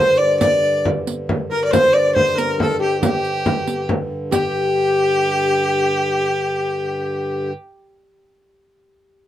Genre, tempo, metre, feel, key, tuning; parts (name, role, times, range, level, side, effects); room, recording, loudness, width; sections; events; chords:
medieval dance; 92 BPM (dotted quarters); 6/8; straight; G minor; A4 = 440 Hz
clear fiddle; melody; 0.0-7.5 s; G4 to D5; -20 LUFS; equal
breathy bright alto recorder; second line; 0.0-7.5 s; G4 to Eb5; -22 LUFS; left 3 dB
concert harp; second line; 0.0-7.5 s; G4 to D5; -23 LUFS; equal
hand-pumped harmonium; drone; 0.0-7.5 s; G2 to D3; -26 LUFS; right 1 dB
frame drum; percussion; 0.2-4.5 s; -21 LUFS; left 1 dB
riq; percussion; 0.4-4.5 s; -24 LUFS; right 5 dB
moderate booth ambience, RT60 0.2 s; dark, warm production; -16 LUFS; side -12 dB against mid
0.0-4.3 A section; 4.3-6.9 B section